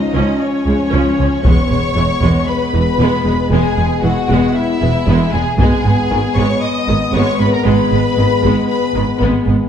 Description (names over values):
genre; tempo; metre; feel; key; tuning
cinematic, epic orchestral film score; 116 BPM; 4/4; straight; unclear; A4 = 439 Hz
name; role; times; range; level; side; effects
warm symphonic violin section; melody; 0.0-9.2 s; Db5 to Eb6; -22 LUFS; left 2 dB; none
warm symphonic violin section; second line; 0.0-9.2 s; Db4 to Eb5; -21 LUFS; left 4 dB; none
mellow French horn section; sustained chords; 0.0-9.7 s; F3 to Db4; -20 LUFS; left 3 dB; none
rich symphonic viola section; accompaniment; 0.1-9.5 s; Db3 to Db4; -21 LUFS; equal; none
warm studio double bass section; bass; 0.1-9.5 s; E1 to Db2; -18 LUFS; right 2 dB; none
warm symphonic cello section; bass; 0.2-9.5 s; Db2 to Ab2; -18 LUFS; right 2 dB; none
taiko ensemble; drums; 1.4-2.5, 5.6-6.6 s; none; -17 LUFS; equal; none
room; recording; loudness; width
moderate scoring stage reverb, RT60 1.6 s; dark, warm production; -12 LUFS; side -8 dB against mid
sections
0.0-9.7 A section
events
none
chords
0.0 Db; 1.4 E; 5.6 Abm